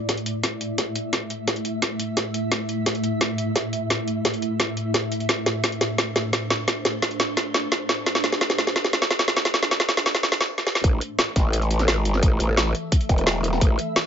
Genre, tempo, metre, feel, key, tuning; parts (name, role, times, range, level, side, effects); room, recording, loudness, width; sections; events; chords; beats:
dark technical drum and bass; 173 BPM; 4/4; straight; A minor; A4 = 439 Hz
swarming drone; sustained chords; 0.0-14.1 s; A2 to E5; -28 LUFS; equal; built-in reverb, sidechain pumping
drum and bass drum kit; drums; 0.1-14.0 s; hi-hat, snare drum; -22 LUFS; equal
electronic kick drum; drums; 0.1-13.7 s; -23 LUFS; equal; high-pass filter on kick, high-pass filter on room
growl bass; bass; 10.8-13.8 s; E1 to A1; -22 LUFS; equal; chorus, overdrive, sidechain pumping
light reverb; high-pass filter, nothing above 7.6 kHz; -20 LUFS; side -8 dB against mid
0.0-10.8 A section; 10.8-14.1 B section
build-up 0.0-10.8; drum fill 0.0-10.5, 10.6; stop 10.5-10.8; drop 10.8-14.1
0.0 A5
0.09 0.43 0.78 | 1.13 1.48 1.82 2.17 | 2.52 2.86 3.21 3.56 | 3.90 4.25 4.60 4.94 | 5.29 5.64 5.98 6.33 | 6.68 7.02 7.37 7.72 | 8.06 8.41 8.76 9.11 | 9.45 9.80 10.15 10.49 | 10.84 11.19 11.53 11.88 | 12.23 12.57 12.92 13.27 | 13.61 13.96